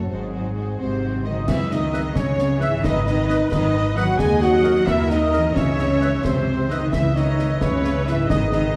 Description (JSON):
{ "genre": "cinematic, heroic adventure film score", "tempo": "88 BPM (dotted quarters)", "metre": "6/8", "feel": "straight", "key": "C# dorian", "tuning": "A4 = 441 Hz", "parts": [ { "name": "clear symphonic violin section", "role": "melody", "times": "0.0-8.8 s", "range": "B#4 to G#5", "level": "-36 LUFS", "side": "equal", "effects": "none" }, { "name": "warm symphonic violin section", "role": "second line", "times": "0.0-8.8 s", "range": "F#4 to G#5", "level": "-35 LUFS", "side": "equal", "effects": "none" }, { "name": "warm symphonic viola section", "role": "accompaniment", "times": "0.0-8.8 s", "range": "G#3 to E5", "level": "-35 LUFS", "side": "equal", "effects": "none" }, { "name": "warm French horn section", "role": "sustained chords", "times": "0.0-8.8 s", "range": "F#3 to G#4", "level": "-26 LUFS", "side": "equal", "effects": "none" }, { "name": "concert harp", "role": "arpeggios", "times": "0.0-8.8 s", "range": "F#2 to A4", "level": "-32 LUFS", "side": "equal", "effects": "none" }, { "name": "clear trumpet section", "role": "stabs", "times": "0.1-8.8 s", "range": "G#4 to G#5", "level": "-32 LUFS", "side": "equal", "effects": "none" }, { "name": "rich symphonic cello section", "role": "bass", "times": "0.1-8.8 s", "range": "G#2 to G#3", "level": "-30 LUFS", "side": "equal", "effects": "none" }, { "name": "rich symphonic double bass section", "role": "bass", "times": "0.1-8.8 s", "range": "G#1 to D#2", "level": "-27 LUFS", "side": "equal", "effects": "none" }, { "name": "concert flute", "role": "second line", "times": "0.8-8.8 s", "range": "B#4 to G#5", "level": "-34 LUFS", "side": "equal", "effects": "none" }, { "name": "concert snare drum, clash cymbals and concert bass drum", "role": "drums", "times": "1.5-8.7 s", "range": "none", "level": "-29 LUFS", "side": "equal", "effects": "none" }, { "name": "clear clarinet", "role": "second line", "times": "1.9-8.8 s", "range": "A#4 to B4", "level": "-37 LUFS", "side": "equal", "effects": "none" }, { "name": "clear oboe", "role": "second line", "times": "1.9-8.8 s", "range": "D#5 to E5", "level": "-37 LUFS", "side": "equal", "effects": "none" } ], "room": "moderate scoring stage reverb, RT60 1.7 s", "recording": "dark, warm production", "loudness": "-20 LUFS", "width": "mono", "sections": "0.0-1.5 A section; 1.5-8.8 B section", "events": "build-up 0.0-1.5", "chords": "0.1 G#7; 1.5 C#m7; 2.8 G#m; 4.2 D#m; 5.6 C#m7" }